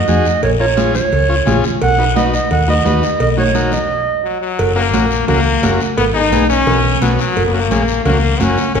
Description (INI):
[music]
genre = latin, cumbia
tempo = 173 BPM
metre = 4/4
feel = straight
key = unclear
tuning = A4 = 435 Hz
[part]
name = warm clarinet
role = melody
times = 0.0-4.4 s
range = Db5 to F#5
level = -17 LUFS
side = right 5 dB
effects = none
[part]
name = overdriven combo organ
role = accompaniment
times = 0.1-8.6 s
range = Bb3 to Db5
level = -20 LUFS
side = left 2 dB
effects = none
[part]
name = hollow-body short-scale fingered electric bass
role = bass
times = 0.1-8.8 s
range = Gb1 to F2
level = -17 LUFS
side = left 1 dB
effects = none
[part]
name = congas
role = percussion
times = 0.1-8.8 s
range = none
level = -21 LUFS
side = right 1 dB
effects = none
[part]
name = guiro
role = percussion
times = 0.1-8.8 s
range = none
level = -28 LUFS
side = left 7 dB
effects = none
[part]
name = cowbell and timbales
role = percussion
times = 0.4-8.8 s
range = none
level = -23 LUFS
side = right 5 dB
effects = none
[part]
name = brilliant trombone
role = second line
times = 4.2-8.8 s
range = F#3 to Eb4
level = -16 LUFS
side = left 4 dB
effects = none
[sound]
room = wet recital hall reverb, RT60 1.5 s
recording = recorded in a church or concert hall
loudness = -12 LUFS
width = side -6 dB against mid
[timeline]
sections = 0.0-4.6 A section; 4.6-8.8 B section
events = stop 3.9-4.6; trombone solo 4.6-8.8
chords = 0.4 Bbm; 1.8 B; 4.6 Gb; 6.0 Abm; 6.7 Bsus2; 7.4 Gb